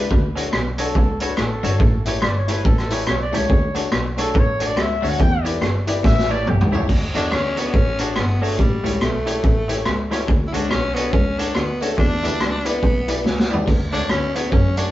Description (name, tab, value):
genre	ska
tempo	142 BPM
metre	4/4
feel	swing 61% on 8ths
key	D major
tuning	A4 = 439 Hz
part	mellow trumpet	melody	0.0-6.9 s	G4 to G5	-26 LUFS	equal	none
part	clean electric guitar	accompaniment	0.0-14.9 s	A3 to D5	-32 LUFS	right 3 dB	none
part	twangy electric guitar	riff	0.0-14.7 s	G2 to F#3	-31 LUFS	left 2 dB	none
part	warm upright piano	stabs	0.0-14.9 s	D4 to D5	-28 LUFS	left 4 dB	tube saturation
part	muted double bass	bass	0.0-14.9 s	G1 to F#2	-24 LUFS	equal	none
part	raw garage drum kit	drums	0.1-14.9 s	crash cymbal, hi-hat, kick drum, rim click, snare drum, splash cymbal, toms	-20 LUFS	equal	none
part	tambourine	percussion	0.4-14.9 s	none	-46 LUFS	right 3 dB	none
part	raspy tenor saxophone	melody	7.2-14.9 s	G3 to E4	-24 LUFS	equal	none
room	wet stone room reverb, RT60 1.0 s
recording	band playing live in one room, nothing above 7.6 kHz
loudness	-17 LUFS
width	side -15 dB against mid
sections	0.0-6.9 A section; 6.9-14.9 B section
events	trumpet solo 0.0-6.9; drum fill 6.0-6.9, 13.3-13.7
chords	0.1 Dmaj7; 1.8 A7; 3.5 Dmaj7; 5.2 Em7; 6.0 A7; 6.9 Dmaj7; 8.6 A7; 10.3 Dmaj7; 12.0 Em7; 13.7 Dmaj7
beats	| 0.11 0.53 0.96 1.38 | 1.81 2.23 2.65 3.08 | 3.50 3.93 4.35 4.77 | 5.20 5.62 6.04 6.47 | 6.89 7.32 7.74 8.16 | 8.59 9.01 9.44 9.86 | 10.29 10.71 11.13 11.56 | 11.98 12.40 12.83 13.25 | 13.68 14.10 14.52